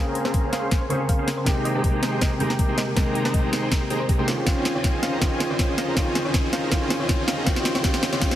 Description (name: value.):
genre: future bass.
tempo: 160 BPM.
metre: 4/4.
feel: half-time.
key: unclear.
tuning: A4 = 440 Hz.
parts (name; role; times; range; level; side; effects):
dark grand piano; accompaniment; 0.0-8.4 s; C3 to Ab4; -26 LUFS; right 1 dB; sidechain pumping, dub echo.
dense compressed supersaw; riff; 0.0-8.4 s; Db4 to Db6; -27 LUFS; equal; sidechain pumping, low-pass filter, dub echo.
riser; sound effects; 2.1-8.4 s; none; -36 LUFS; equal; none.
thumb-piano-like synth pluck; arpeggios; 0.1-8.4 s; G4 to F5; -33 LUFS; right 1 dB; chorus, sidechain pumping, dub echo.
trap drum kit; drums; 0.2-8.4 s; hi-hat, snare drum; -27 LUFS; left 1 dB; overdrive.
electronic kick drum; drums; 0.3-8.3 s; none; -23 LUFS; equal; none.
room: moderate lush hall reverb, RT60 1.8 s.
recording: heavily compressed radio sound.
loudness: -20 LUFS.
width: side -12 dB against mid.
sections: 0.0-8.4 A section.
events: build-up 0.0-8.4; drum fill 0.0-8.4.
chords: 0.0 Bbm9; 1.5 Abmaj9; 4.3 Dbmaj9; 7.5 Eb7.